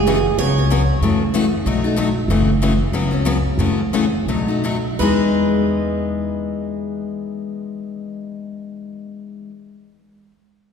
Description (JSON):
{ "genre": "acoustic string swing (jazz manouche)", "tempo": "160-189 BPM", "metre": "4/4", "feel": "swing 58% on 8ths", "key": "E major", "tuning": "A4 = 436 Hz", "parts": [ { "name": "picked steel-string acoustic guitar", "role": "second line", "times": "0.0-1.0, 5.0-9.4 s", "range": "G#4 to C#5", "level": "-23 LUFS", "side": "right 7 dB", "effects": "none" }, { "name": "upright bass", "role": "bass", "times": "0.0-9.4 s", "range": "F#1 to F#2", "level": "-21 LUFS", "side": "equal", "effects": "none" }, { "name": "picked steel-string acoustic guitar", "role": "accompaniment", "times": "0.1-9.5 s", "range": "B2 to G#4", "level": "-19 LUFS", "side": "left 4 dB", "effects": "none" } ], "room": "wet concert hall reverb, RT60 2.5 s", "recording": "recorded in a church or concert hall", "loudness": "-16 LUFS", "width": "side -7 dB against mid", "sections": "0.0-5.0 A section; 5.0-8.0 B section", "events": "slowing down 2.3-5.0", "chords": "0.4 C#7sus4; 1.0 F#m7; 1.7 B7; 2.3 F#m7; 2.9 C#7sus4; 3.6 F#m7; 4.3 B7; 5.0 Emaj7", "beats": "0.06 0.38 0.70 | 1.01 1.33 1.65 1.97 | 2.29 2.61 2.93 3.25 | 3.58 3.92 4.27 4.63 | 5.00 5.37 5.74 6.12 | 6.49 6.87 7.24 7.61" }